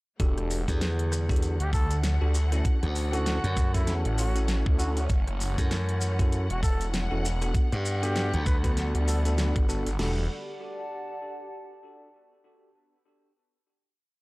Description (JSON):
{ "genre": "glitch hop", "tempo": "98 BPM", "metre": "4/4", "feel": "swing 58% on 16ths", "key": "E dorian", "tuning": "A4 = 441 Hz", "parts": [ { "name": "rich symphonic string section", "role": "sustained chords", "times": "0.2-10.3 s", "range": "D3 to F#5", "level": "-38 LUFS", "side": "left 1 dB", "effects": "sidechain pumping" }, { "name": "bell-like tine electric piano", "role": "stabs", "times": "0.2-10.2 s", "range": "B3 to A4", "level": "-36 LUFS", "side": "equal", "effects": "sidechain pumping, tape echo" }, { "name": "phased detuned saw bass", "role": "bass", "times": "0.2-10.3 s", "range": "E1 to D2", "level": "-26 LUFS", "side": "equal", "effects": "phaser, tube saturation" }, { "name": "pop drum kit", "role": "drums", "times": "0.2-10.2 s", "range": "crash cymbal, kick drum, snare drum", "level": "-26 LUFS", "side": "equal", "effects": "none" }, { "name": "pop drum kit", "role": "drums", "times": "0.2-10.0 s", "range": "hi-hat, rim click, snare drum", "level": "-35 LUFS", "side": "equal", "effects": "none" }, { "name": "maracas", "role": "percussion", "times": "0.2-10.0 s", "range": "none", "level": "-40 LUFS", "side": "left 1 dB", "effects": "none" }, { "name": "warbly tape-like pad", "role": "texture", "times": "0.6-12.4 s", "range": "D3 to B5", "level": "-41 LUFS", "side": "equal", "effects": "chorus, built-in reverb, sidechain pumping" }, { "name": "glassy slap bass", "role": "bass", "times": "0.7-8.9 s", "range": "D2 to G2", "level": "-27 LUFS", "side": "equal", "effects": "none" }, { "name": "dark trumpet", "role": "melody", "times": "1.6-9.3 s", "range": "E4 to B4", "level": "-37 LUFS", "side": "equal", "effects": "vintage 12-bit sampler grit, tape echo" } ], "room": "digital ambience", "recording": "dry, gritty hardware recording, cassette tape", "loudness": "-24 LUFS", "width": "side -23 dB against mid", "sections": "0.2-10.0 drop; 10.0-12.4 final chord", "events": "drop 0.2-10.0", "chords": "0.2 Em11; 2.6 Dmaj7; 5.1 F#m7; 7.5 Gmaj7; 10.0 Em11 (rootless)" }